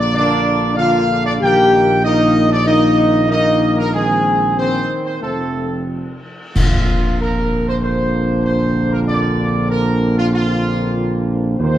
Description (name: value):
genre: classical, ceremonial fanfare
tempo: 95 BPM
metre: 4/4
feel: straight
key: Bb major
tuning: A4 = 440 Hz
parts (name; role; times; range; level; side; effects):
- dark trumpet section; melody; 0.0-11.8 s; F4 to G5; -19 LUFS; right 1 dB; none
- mellow French horn section; sustained chords; 0.0-11.8 s; Ab3 to G4; -20 LUFS; left 3 dB; none
- warm trombone section; sustained chords; 0.0-11.8 s; D3 to C4; -24 LUFS; right 2 dB; none
- dark tuba; bass; 0.0-11.8 s; F1 to Eb2; -18 LUFS; right 1 dB; none
- cymbal swell, clash cymbals and concert bass drum; percussion; 3.9-7.8 s; none; -20 LUFS; left 1 dB; none
room: wet recital hall reverb, RT60 1.6 s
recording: dark, warm production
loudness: -14 LUFS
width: side -12 dB against mid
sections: 0.0-6.6 A section; 6.6-11.8 B section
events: band accent 6.6-7.2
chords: 0.0 Bb; 1.4 Eb/Bb; 3.9 Ab/Bb; 5.2 F; 6.6 Bbadd9